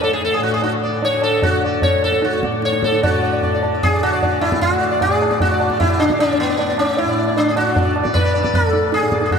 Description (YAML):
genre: indian classical, Hindustani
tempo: 152 BPM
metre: 4/4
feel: straight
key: D raga yaman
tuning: A4 = 439 Hz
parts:
  - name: sitar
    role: melody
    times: 0.0-9.4 s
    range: B3 to D5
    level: -17 LUFS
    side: equal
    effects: ping-pong delay
  - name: tanpura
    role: drone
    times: 0.0-9.4 s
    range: D2 to D3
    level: -24 LUFS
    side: left 1 dB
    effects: none
  - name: tabla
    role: percussion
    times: 0.0-9.4 s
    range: none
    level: -21 LUFS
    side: right 1 dB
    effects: none
room: wet cathedral reverb, RT60 5.5 s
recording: dreamy mix soaked in reverb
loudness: -15 LUFS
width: side -6 dB against mid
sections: 0.0-3.0 A section; 3.0-9.4 B section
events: speeding up 0.0-9.4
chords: none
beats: 0.22 0.62 1.02 | 1.43 1.83 2.23 2.63 | 3.03 3.43 3.83 4.22 | 4.62 5.02 5.41 5.80 | 6.20 6.59 6.98 7.37 | 7.76 8.15 8.54 8.92 | 9.31